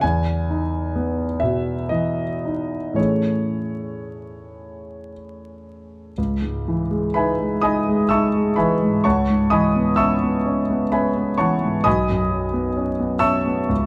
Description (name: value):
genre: classical, impressionist solo piano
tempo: 54-66 BPM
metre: 3/4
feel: rubato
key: C# minor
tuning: A4 = 441 Hz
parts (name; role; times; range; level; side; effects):
- warm concert grand piano; solo; 0.0-13.9 s; B1 to E6; -21 LUFS; equal; none
room: light reverb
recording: close, detailed microphones, vinyl crackle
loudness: -21 LUFS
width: mono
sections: 0.0-6.2 A section; 6.2-13.9 B section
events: none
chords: 0.0 Emaj7; 3.0 Amaj7; 6.2 C#m9; 9.1 Amaj9/C#; 11.9 B9